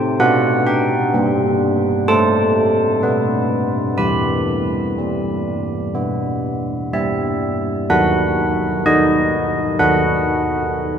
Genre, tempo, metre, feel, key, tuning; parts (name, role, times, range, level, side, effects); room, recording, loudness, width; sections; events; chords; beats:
classical, tune for church bells; 63 BPM; 4/4; straight; E minor; A4 = 440 Hz
carillon bells; solo; 0.0-11.0 s; D#3 to B5; -15 LUFS; equal
wet cathedral reverb, RT60 6.8 s; in a vast, echoing space; -15 LUFS; side -8 dB against mid
0.0-7.9 A section; 7.9-11.0 B section
0.2 G/B; 2.1 Am; 3.0 N.C.; 4.0 Em; 7.9 B/D#
| 0.21 1.14 2.07 3.01 | 3.98 4.97 5.95 6.93 | 7.90 8.86 9.80 10.75